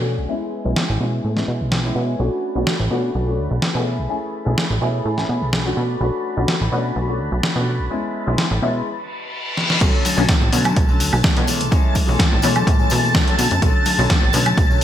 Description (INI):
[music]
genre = filtered disco house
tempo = 126 BPM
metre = 4/4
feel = straight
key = B dorian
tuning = A4 = 440 Hz
[part]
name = clear grand piano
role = accompaniment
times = 0.0-14.8 s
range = D3 to G#4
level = -23 LUFS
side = left 2 dB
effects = phaser, sidechain pumping, low-pass filter
[part]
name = string machine, full ensemble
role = sustained chords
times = 0.0-14.8 s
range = G#5 to A6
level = -28 LUFS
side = equal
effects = ensemble chorus, sidechain pumping, low-pass filter
[part]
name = plucky analog bass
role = bass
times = 0.0-14.8 s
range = A1 to B2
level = -21 LUFS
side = equal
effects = sidechain pumping, low-pass filter
[part]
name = dusty soul sampler-style drum kit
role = drums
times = 0.8-14.8 s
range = crash cymbal, hi-hat, snare drum, woodblock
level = -22 LUFS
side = equal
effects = sidechain pumping on hats, sidechain pumping on cymbals, sidechain pumping on perc, gated reverb
[part]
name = reverse cymbal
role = sound effects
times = 9.1-9.8 s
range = none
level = -24 LUFS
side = left 2 dB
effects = none
[part]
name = electronic kick drum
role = drums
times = 9.8-14.7 s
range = none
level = -17 LUFS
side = equal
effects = overdrive
[part]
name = tambourine and congas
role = percussion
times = 9.8-14.8 s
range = none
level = -27 LUFS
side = left 2 dB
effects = sidechain pumping on perc, low-pass filter on perc
[sound]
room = light reverb, digital ambience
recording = bright 1980s-style digital production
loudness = -16 LUFS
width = side -10 dB against mid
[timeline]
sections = 0.0-9.8 A section; 9.8-14.8 B section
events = filter sweep 0.0-9.8; reverse cymbal 9.1-9.8; drum fill 9.6; drop 9.8-14.8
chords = 0.3 Amaj9; 2.2 Bm9; 7.9 Amaj9; 9.8 Bm9